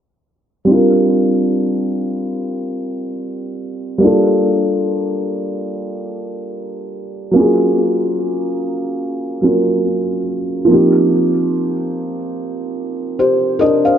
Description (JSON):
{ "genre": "R&B", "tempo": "72 BPM", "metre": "4/4", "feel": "swing 58% on 16ths", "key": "Bb major", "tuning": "A4 = 439 Hz", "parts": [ { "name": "felt-muted upright piano", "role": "solo", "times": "0.6-14.0 s", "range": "F3 to F5", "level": "-14 LUFS", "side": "equal", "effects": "ping-pong delay" } ], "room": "moderate lush hall reverb, RT60 2.7 s", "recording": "low-pass filter", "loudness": "-14 LUFS", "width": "side -9 dB against mid", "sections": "0.7-14.0 A section", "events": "filter sweep 0.7-14.0", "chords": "0.7 Bb69; 4.0 Gm9; 7.3 Gbmaj9; 10.7 F9sus4", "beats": "| 0.68 1.52 2.35 3.18 | 4.02 4.85 5.68 6.52 | 7.35 8.18 9.02 9.85 | 10.68 11.52 12.35 13.18" }